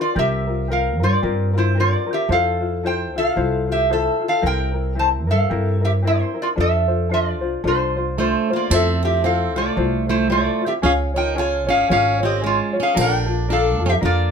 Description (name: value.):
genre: Hawaiian.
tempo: 112 BPM.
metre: 4/4.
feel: swing 60% on 8ths.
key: F major.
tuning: A4 = 442 Hz.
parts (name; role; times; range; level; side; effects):
metal-body resonator slide guitar; melody; 0.0-14.3 s; E4 to A5; -20 LUFS; equal; none.
tenor ukulele; accompaniment; 0.0-14.3 s; C4 to Db5; -25 LUFS; left 5 dB; none.
upright bass; bass; 0.2-14.3 s; Ab1 to G2; -22 LUFS; right 1 dB; none.
picked plugged-in swing-style acoustic guitar; second line; 8.2-14.3 s; Ab3 to F4; -24 LUFS; right 6 dB; none.
room: light reverb.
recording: none.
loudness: -17 LUFS.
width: side -6 dB against mid.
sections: 0.0-8.7 A section; 8.7-14.3 A section.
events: none.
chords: 0.2 C7sus4; 2.3 Fmaj7; 4.4 C7; 6.6 F6; 8.7 Fmaj7; 10.8 Db; 13.0 Bbmaj7.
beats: | 0.15 0.69 1.22 1.76 | 2.29 2.83 3.37 3.90 | 4.43 4.97 5.50 6.04 | 6.57 7.10 7.64 8.17 | 8.70 9.23 9.77 10.30 | 10.83 11.36 11.89 12.43 | 12.96 13.49 14.02.